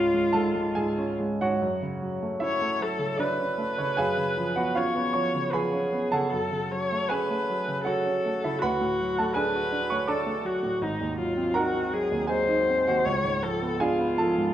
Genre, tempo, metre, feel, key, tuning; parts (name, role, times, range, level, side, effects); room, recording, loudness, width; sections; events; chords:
classical, romantic duo for viola and grand piano; 68-83 BPM; 3/4; rubato; F# minor; A4 = 440 Hz
rich viola; melody; 0.0-14.5 s; D#4 to C#5; -27 LUFS; left 2 dB
clear baby grand piano; accompaniment; 0.0-14.5 s; G#1 to D6; -26 LUFS; right 2 dB
wet recital hall reverb, RT60 1.4 s; dark, warm production; -24 LUFS; side -11 dB against mid
0.0-1.6 A section; 1.6-14.5 B section
0.0 C#; 1.6 F#m; 4.0 C#7/F#; 6.3 F#m; 8.6 D; 10.8 G#7; 13.1 C#7b9